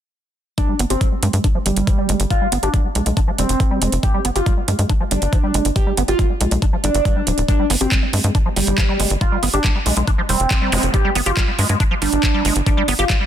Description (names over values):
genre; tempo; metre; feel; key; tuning
psychedelic trance; 139 BPM; 4/4; straight; unclear; A4 = 440 Hz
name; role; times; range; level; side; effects
overdriven synth lead; melody; 0.6-13.2 s; G3 to G4; -22 LUFS; right 1 dB; distortion, chorus, phaser, sidechain pumping, ping-pong delay
liquid acid bass; riff; 0.6-13.2 s; F3 to G4; -24 LUFS; right 1 dB; chorus, auto-pan, sidechain pumping, ping-pong delay
electronic kick drum; drums; 0.6-13.2 s; none; -18 LUFS; equal; overdrive
garage drum kit; drums; 0.6-13.2 s; handclaps, hi-hat; -23 LUFS; right 2 dB; overdrive
tight sequencer bass; bass; 0.8-13.1 s; D1 to G2; -20 LUFS; equal; none
zap; sound effects; 10.7-10.8 s; none; -26 LUFS; equal; none
room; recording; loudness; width
little or no reverb; dense, heavily limited modern master; -15 LUFS; side -10 dB against mid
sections
0.6-13.3 A section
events
filter sweep on acid bass 0.6-13.3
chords
0.6 G5